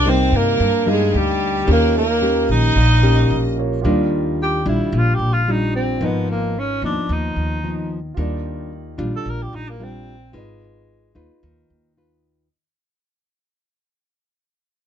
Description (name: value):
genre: bossa nova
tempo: 111 BPM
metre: 4/4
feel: straight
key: Eb major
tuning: A4 = 440 Hz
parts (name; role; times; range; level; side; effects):
- breathy tenor saxophone; melody; 0.0-10.4 s; G3 to Bb4; -21 LUFS; right 1 dB; none
- clear studio violin section; second line; 0.0-3.5 s; G4 to Eb5; -25 LUFS; right 2 dB; none
- nylon-string guitar; accompaniment; 0.0-12.5 s; G2 to Cb5; -22 LUFS; left 2 dB; none
- warm grand piano; accompaniment; 0.0-12.5 s; C4 to F5; -31 LUFS; right 8 dB; none
- upright bass; bass; 0.0-12.5 s; Ab1 to G2; -21 LUFS; equal; none
room: light reverb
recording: nothing above 8.0 kHz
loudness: -16 LUFS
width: side -9 dB against mid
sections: 0.0-3.8 A section; 3.8-12.5 B section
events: fade-out 3.8-12.5; tenor saxophone solo 3.8-12.5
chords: 0.0 Cm7; 1.7 Eb7; 3.8 Ebmaj9; 6.0 Abm6; 8.2 Ebmaj9; 10.3 Abm6